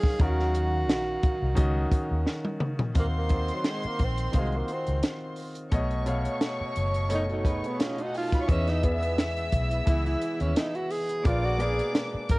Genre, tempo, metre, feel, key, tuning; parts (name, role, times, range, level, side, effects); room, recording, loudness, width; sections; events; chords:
lush 1970s-style soul; 87 BPM; 4/4; swing 54% on 16ths; A4 = 441 Hz
breathy tenor saxophone; melody; 0.0-12.4 s; Gb3 to Bb4; -32 LUFS; right 1 dB; cassette tape
clear baby grand piano; accompaniment; 0.0-12.4 s; B2 to F5; -33 LUFS; left 1 dB; cassette tape
warm studio string section; sustained chords; 0.0-2.9, 8.5-12.4 s; Cb3 to F5; -40 LUFS; equal; cassette tape
compact cocktail drum kit; drums; 0.0-12.4 s; hi-hat, kick drum, snare drum, toms; -26 LUFS; equal; cassette tape
vintage muted fingered electric bass; bass; 0.2-12.4 s; F#1 to E2; -28 LUFS; equal
warm studio violin section; second line; 3.0-12.3 s; D#4 to E6; -34 LUFS; equal; cassette tape
electric guitar through a small old amp; riff; 7.1-8.5 s; D#4 to C#5; -36 LUFS; right 2 dB; spring reverb, cassette tape
little or no reverb; home recording on cassette; -24 LUFS; side -22 dB against mid
0.0-3.0 A section; 3.0-12.4 B section
drum fill 2.3-3.0; tenor saxophone solo 3.0-12.4
0.0 Ebm9; 5.7 B9; 8.5 Emaj7; 11.3 Bb7b9